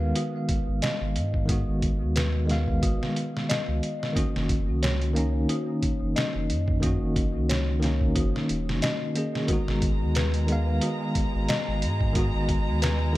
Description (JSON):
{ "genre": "trip hop", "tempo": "90 BPM", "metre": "4/4", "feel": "swing 55% on 16ths", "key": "G# dorian", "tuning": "A4 = 435 Hz", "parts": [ { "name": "bell-like tine electric piano", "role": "accompaniment", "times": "0.0-13.2 s", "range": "D#3 to E#5", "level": "-28 LUFS", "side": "equal", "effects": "tremolo, tape echo" }, { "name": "dark detuned synth bell", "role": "arpeggios", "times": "0.0-13.2 s", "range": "F#4 to D#5", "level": "-34 LUFS", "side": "left 2 dB", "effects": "chorus, low-pass filter, tape echo" }, { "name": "warm sub bass", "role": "bass", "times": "0.0-13.2 s", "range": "D#1 to G#2", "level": "-27 LUFS", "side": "equal", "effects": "none" }, { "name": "trip hop sampler-style drum kit", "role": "drums", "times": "0.2-13.0 s", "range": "hi-hat, kick drum, snare drum", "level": "-28 LUFS", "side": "equal", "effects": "none" }, { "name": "warm chamber violin section", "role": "sustained chords", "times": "9.5-13.2 s", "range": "G#3 to A#5", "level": "-34 LUFS", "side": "equal", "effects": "none" } ], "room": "digital ambience", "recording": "none", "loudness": "-23 LUFS", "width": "side -17 dB against mid", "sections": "0.0-13.2 A section", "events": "filter sweep on synth bell 0.0-13.2", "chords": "0.0 G#m7; 4.2 F#6; 9.5 G#m7", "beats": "0.16 0.82 | 1.49 2.16 2.82 3.49 | 4.16 4.82 5.49 6.16 | 6.82 7.49 8.16 8.82 | 9.49 10.16 10.82 11.49 | 12.16 12.82" }